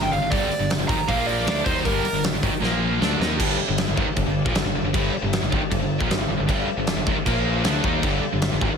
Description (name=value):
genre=hard rock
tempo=155 BPM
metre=4/4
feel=straight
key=G minor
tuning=A4 = 439 Hz
part: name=dark smooth lead guitar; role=melody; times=0.0-2.2 s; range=Bb4 to Bb5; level=-26 LUFS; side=right 1 dB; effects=overdrive, tape echo
part: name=overdriven tonewheel organ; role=sustained chords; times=0.0-8.8 s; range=G3 to A5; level=-36 LUFS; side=equal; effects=none
part: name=distorted electric guitar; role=riff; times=0.0-8.7 s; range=G2 to Eb4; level=-28 LUFS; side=right 13 dB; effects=overdrive
part: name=sludgy distorted guitar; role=riff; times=0.0-8.8 s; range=G2 to Eb4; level=-28 LUFS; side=left 9 dB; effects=overdrive
part: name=tight distorted guitar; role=riff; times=0.0-8.7 s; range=G2 to Eb4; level=-29 LUFS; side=left 1 dB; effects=distortion
part: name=growling fingered electric bass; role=bass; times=0.0-8.8 s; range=G1 to Eb2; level=-29 LUFS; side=equal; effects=overdrive
part: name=huge arena drum kit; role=drums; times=0.1-8.7 s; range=crash cymbal, hi-hat, kick drum, snare drum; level=-24 LUFS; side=equal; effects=none
room=moderate large studio reverb, RT60 0.8 s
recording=none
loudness=-20 LUFS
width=side -6 dB against mid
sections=0.0-3.4 A section; 3.4-8.8 B section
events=lead electric guitar solo 0.0-3.4; drum fill 2.6-3.4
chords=0.0 G5; 1.1 Bb5; 1.5 Gm; 2.6 Bb5; 3.0 Gm; 7.3 Bb5; 7.7 Gm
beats=| 0.32 0.70 1.08 1.47 | 1.86 2.24 2.63 3.01 | 3.40 3.79 4.17 4.56 | 4.94 5.33 5.72 6.11 | 6.49 6.88 7.27 7.65 | 8.04 8.43